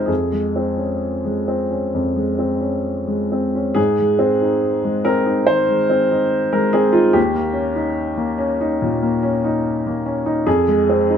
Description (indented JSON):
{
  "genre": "neoclassical minimalist piano",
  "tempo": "64-74 BPM",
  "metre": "4/4",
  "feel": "rubato",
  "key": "Ab major",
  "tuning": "A4 = 441 Hz",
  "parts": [
    { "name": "clear upright piano", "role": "solo", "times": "0.0-11.2 s", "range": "Eb2 to C5", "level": "-16 LUFS", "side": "equal", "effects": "none" }
  ],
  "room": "moderate studio reverb, RT60 0.6 s",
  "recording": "none",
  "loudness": "-16 LUFS",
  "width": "side -8 dB against mid",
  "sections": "0.0-3.8 A section; 3.8-11.2 A section",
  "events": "none",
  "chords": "0.1 Dbmaj7/F; 3.8 Ab; 7.2 Eb7; 10.5 Fm"
}